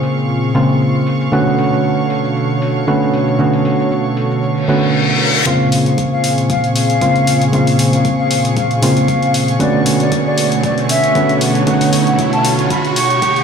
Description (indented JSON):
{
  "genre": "deep house",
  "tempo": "116 BPM",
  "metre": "4/4",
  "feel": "swing 55% on 16ths",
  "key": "unclear",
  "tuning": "A4 = 440 Hz",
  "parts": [
    { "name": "warm analog pad", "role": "sustained chords", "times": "0.0-13.4 s", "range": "Bb2 to C#5", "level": "-20 LUFS", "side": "left 1 dB", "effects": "chorus, vintage 12-bit sampler grit, sidechain pumping" },
    { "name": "percussive organ stab", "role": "stabs", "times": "0.0-12.9 s", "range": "Db3 to F#4", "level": "-15 LUFS", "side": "right 1 dB", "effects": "chorus, sidechain pumping, dub echo" },
    { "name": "electronic hi-hat and shaker", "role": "drums", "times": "0.0-13.4 s", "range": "none", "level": "-23 LUFS", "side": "left 2 dB", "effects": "low-pass filter on perc, low-pass filter on hats, low-pass filter on room" },
    { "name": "warm studio violin section", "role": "texture", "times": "0.0-13.4 s", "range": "Ab4 to Db6", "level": "-27 LUFS", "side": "right 2 dB", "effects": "sidechain pumping" },
    { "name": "reverse cymbal and riser", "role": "sound effects", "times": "4.6-13.4 s", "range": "none", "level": "-21 LUFS", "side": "left 1 dB", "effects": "none" },
    { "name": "mellow jazz flute", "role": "melody", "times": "5.5-13.4 s", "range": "D5 to C#6", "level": "-18 LUFS", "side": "left 2 dB", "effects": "vintage 12-bit sampler grit, dub echo" },
    { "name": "electronic kick drum", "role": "drums", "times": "5.5-13.3 s", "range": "none", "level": "-23 LUFS", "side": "left 1 dB", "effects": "high-pass filter on kick, high-pass filter on room" }
  ],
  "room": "moderate plate reverb, RT60 1.4 s, digital ambience",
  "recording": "played on a big sound system in a bare room, large studio reverb",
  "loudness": "-12 LUFS",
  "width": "side -6 dB against mid",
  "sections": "0.0-5.5 A section; 5.5-13.4 B section",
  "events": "reverse cymbal 4.6-5.5; build-up 5.5-13.4; riser 5.5-13.4",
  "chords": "0.0 Bbm9; 1.3 Bm9; 5.5 Bbm9; 9.6 Bm9"
}